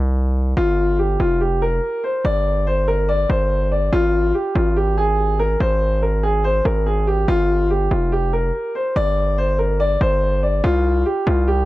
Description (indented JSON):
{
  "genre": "hip hop, drill",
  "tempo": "143 BPM",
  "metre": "4/4",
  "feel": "half-time",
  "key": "G phrygian",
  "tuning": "A4 = 440 Hz",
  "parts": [
    { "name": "distorted 808-style bass", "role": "bass", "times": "0.0-11.7 s", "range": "F1 to C2", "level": "-19 LUFS", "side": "equal", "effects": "distortion" },
    { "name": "dark grand piano", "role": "melody", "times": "0.6-11.7 s", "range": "F4 to D5", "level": "-19 LUFS", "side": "left 1 dB", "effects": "none" }
  ],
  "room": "light reverb, small room reverb",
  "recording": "none",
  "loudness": "-16 LUFS",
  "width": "side -17 dB against mid",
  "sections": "0.0-11.7 A section",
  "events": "break 0.0-0.6",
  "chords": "0.0 N.C.; 0.6 G7(no3); 3.9 N.C.; 7.3 G7(no3); 10.6 Abmaj13/C (rootless)"
}